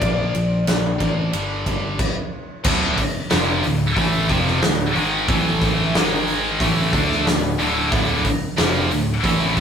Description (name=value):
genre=hard rock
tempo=91 BPM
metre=4/4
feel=straight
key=D minor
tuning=A4 = 440 Hz
part: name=lightly driven lead guitar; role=melody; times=0.0-1.6 s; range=D5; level=-26 LUFS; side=left 5 dB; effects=none
part: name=heavy high-gain guitar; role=riff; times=0.0-9.6 s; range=D2 to D4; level=-26 LUFS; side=equal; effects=distortion
part: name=picked electric bass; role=bass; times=0.0-9.6 s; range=D1 to D2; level=-24 LUFS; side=equal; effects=none
part: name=huge arena drum kit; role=drums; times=0.0-9.6 s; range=crash cymbal, hi-hat, kick drum, ride cymbal, snare drum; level=-21 LUFS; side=equal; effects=none
part: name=heavy high-gain guitar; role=riff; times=2.6-9.6 s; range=D2 to D4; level=-20 LUFS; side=equal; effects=distortion
room=moderate studio reverb, RT60 0.6 s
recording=rough rehearsal-room recording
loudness=-17 LUFS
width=side -7 dB against mid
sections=0.0-2.7 A section; 2.7-9.6 B section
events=none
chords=0.0 Bb; 1.3 G5; 2.7 Dm; 5.3 A5; 5.9 G#5; 6.6 Dm